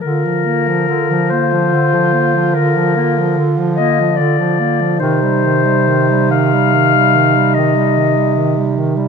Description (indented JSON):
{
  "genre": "classical, lyrical piece for single-reed quartet",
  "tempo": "45-50 BPM (dotted quarters)",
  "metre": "12/8",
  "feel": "rubato",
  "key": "unclear",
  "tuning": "A4 = 440 Hz",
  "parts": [
    { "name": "mellow clarinet", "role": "melody", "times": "0.0-8.7 s", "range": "Bb4 to F5", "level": "-16 LUFS", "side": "left 10 dB", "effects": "none" },
    { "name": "mellow alto saxophone", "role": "second line", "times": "0.0-9.1 s", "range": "Eb4 to F4", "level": "-19 LUFS", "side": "right 9 dB", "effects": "none" },
    { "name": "clear clarinet", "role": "accompaniment", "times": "0.0-9.1 s", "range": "D3 to Bb3", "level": "-19 LUFS", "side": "left 3 dB", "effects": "none" },
    { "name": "clear bass clarinet", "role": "bass", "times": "0.0-9.1 s", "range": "C3 to D3", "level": "-17 LUFS", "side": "right 4 dB", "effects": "none" }
  ],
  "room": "light reverb",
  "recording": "close, detailed microphones",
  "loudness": "-11 LUFS",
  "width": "side -6 dB against mid",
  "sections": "0.0-9.1 A section",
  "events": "none",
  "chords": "0.0 Bb/D; 5.0 Cm"
}